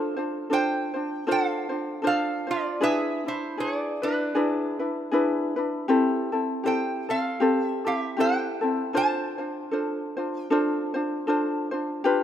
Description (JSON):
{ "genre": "hawaiian", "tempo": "78 BPM", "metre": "4/4", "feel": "swing 57% on 8ths", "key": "unclear", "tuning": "A4 = 442 Hz", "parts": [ { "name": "ukulele", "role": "accompaniment", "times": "0.0-12.2 s", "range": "C4 to C5", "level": "-24 LUFS", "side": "left 1 dB", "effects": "none" }, { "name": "lap resonator guitar", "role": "melody", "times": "0.5-11.2 s", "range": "D4 to A5", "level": "-28 LUFS", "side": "right 3 dB", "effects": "none" } ], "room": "light reverb, studio reverb", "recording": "rough home demo mix", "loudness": "-24 LUFS", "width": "side -10 dB against mid", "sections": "0.0-12.2 A section", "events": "none", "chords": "0.0 Dm7; 2.8 E7; 5.9 Am7; 9.0 Dm7" }